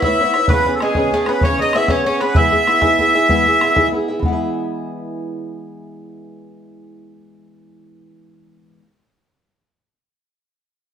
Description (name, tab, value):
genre	celtic folk, Celtic slide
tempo	129 BPM (dotted quarters)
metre	12/8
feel	straight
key	E major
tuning	A4 = 438 Hz
part	accordion	melody	0.0-3.9 s	G#4 to E5	-16 LUFS	equal	light tremolo tuning
part	Irish bouzouki	second line	0.0-3.9 s	G#3 to E4	-26 LUFS	right 1 dB	none
part	bright reedy mid whistle	second line	0.0-3.9 s	G#5 to E6	-24 LUFS	left 5 dB	none
part	picked old ladder-braced acoustic guitar	accompaniment	0.0-8.9 s	C#3 to E5	-21 LUFS	equal	none
part	bodhran	percussion	0.0-4.4 s	none	-20 LUFS	equal	none
room	wet studio reverb, RT60 0.8 s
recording	band playing live in one room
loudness	-13 LUFS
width	side -8 dB against mid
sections	0.0-4.2 A section; 4.2-7.9 B section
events	none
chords	0.5 E6; 2.4 E